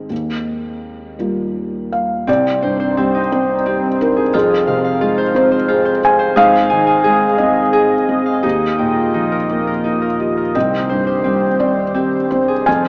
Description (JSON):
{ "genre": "neoclassical piano and strings", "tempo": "55-60 BPM (dotted quarters)", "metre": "6/8", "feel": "rubato", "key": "C minor", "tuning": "A4 = 440 Hz", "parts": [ { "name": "felt-muted upright piano", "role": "accompaniment", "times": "0.0-12.9 s", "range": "C2 to Ab5", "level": "-18 LUFS", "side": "equal", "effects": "none" }, { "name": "warm sub bass", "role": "bass", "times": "0.0-12.9 s", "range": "F1 to Eb2", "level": "-38 LUFS", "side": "equal", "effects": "none" }, { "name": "chorused pulse-width pad", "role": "sustained chords", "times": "2.3-12.9 s", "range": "Eb3 to F5", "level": "-25 LUFS", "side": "equal", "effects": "none" }, { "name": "Celtic harp", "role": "arpeggios", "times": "2.3-12.9 s", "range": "C4 to Ab5", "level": "-21 LUFS", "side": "equal", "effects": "tape echo" } ], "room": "wet cathedral reverb, RT60 7.0 s", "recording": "in a vast, echoing space, small speaker sound", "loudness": "-16 LUFS", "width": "mono", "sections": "0.0-2.3 A section; 2.3-12.9 B section", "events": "none", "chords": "0.1 Ebadd9; 2.3 Cm; 4.3 Fm; 6.4 Ab; 8.4 Ebadd9; 10.5 Cm", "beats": "| 0.10 1.19 | 2.28 3.32 | 4.34 5.35 | 6.37 7.39 | 8.44 9.49 | 10.55 11.59 | 12.67" }